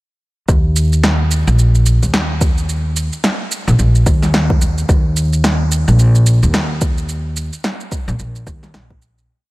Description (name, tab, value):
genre	organic downtempo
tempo	109 BPM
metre	4/4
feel	swing 59% on 16ths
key	unclear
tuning	A4 = 440 Hz
part	upright bass	bass	0.5-9.3 s	Bb1 to Eb2	-13 LUFS	equal	none
part	electronic kick drum	drums	0.5-9.0 s	none	-15 LUFS	equal	overdrive
part	electronic shaker and snare drum	drums	0.5-9.3 s	none	-20 LUFS	equal	overdrive
room	little or no reverb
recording	none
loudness	-12 LUFS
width	side -20 dB against mid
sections	0.5-9.3 groove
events	fade-out 6.4-9.3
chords	none